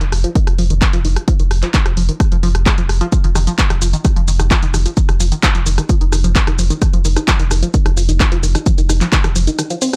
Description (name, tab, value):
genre	driving peak-time techno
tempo	130 BPM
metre	4/4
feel	straight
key	unclear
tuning	A4 = 440 Hz
part	tight sequenced synth	riff	0.0-10.0 s	Eb3 to C4	-25 LUFS	equal	chorus, sidechain pumping, analog delay
part	saturated sub bass	bass	0.0-9.5 s	F1	-18 LUFS	equal	sidechain pumping, low-pass filter
part	punchy analog drum machine	drums	0.0-10.0 s	handclaps, hi-hat, rim click, shaker	-22 LUFS	equal	sidechain pumping on hats, sidechain pumping on perc
part	electronic kick drum	drums	0.4-9.2 s	none	-16 LUFS	equal	overdrive
room	little or no reverb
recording	dry, gritty hardware recording, transformer saturation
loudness	-15 LUFS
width	mono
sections	0.0-10.0 A section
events	none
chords	none